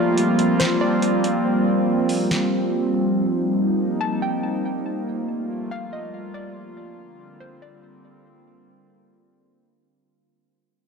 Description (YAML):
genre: hip hop, atmospheric cloud-rap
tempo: 141 BPM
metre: 4/4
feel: half-time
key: Bb major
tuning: A4 = 440 Hz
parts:
  - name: warbly tape-like pad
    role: sustained chords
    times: 0.0-9.9 s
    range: D3 to F4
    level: -20 LUFS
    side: equal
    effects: chorus, built-in reverb
  - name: booming analog drum machine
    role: drums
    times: 0.2-2.4 s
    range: hi-hat, snare drum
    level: -26 LUFS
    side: right 1 dB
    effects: none
  - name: warbly dusty pluck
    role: melody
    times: 0.6-1.4, 4.0-8.2 s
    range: C5 to A5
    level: -30 LUFS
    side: equal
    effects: chorus, phaser, low-pass filter, digital delay
room: moderate lush hall reverb, RT60 1.7 s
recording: dark, warm production, tape saturation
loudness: -19 LUFS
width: side -5 dB against mid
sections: 0.0-10.0 A section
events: break 0.0-3.2; fade-out 0.0-10.0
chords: 0.0 Bb69; 3.2 Cm7; 4.9 Gm9; 6.6 Bb69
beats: 0.17 0.60 1.03 | 1.45 1.88 2.30 2.73 | 3.15 3.58 4.00 4.43 | 4.86 5.28 5.71 6.13 | 6.56 6.98 7.41 7.83 | 8.26 8.69 9.11 9.54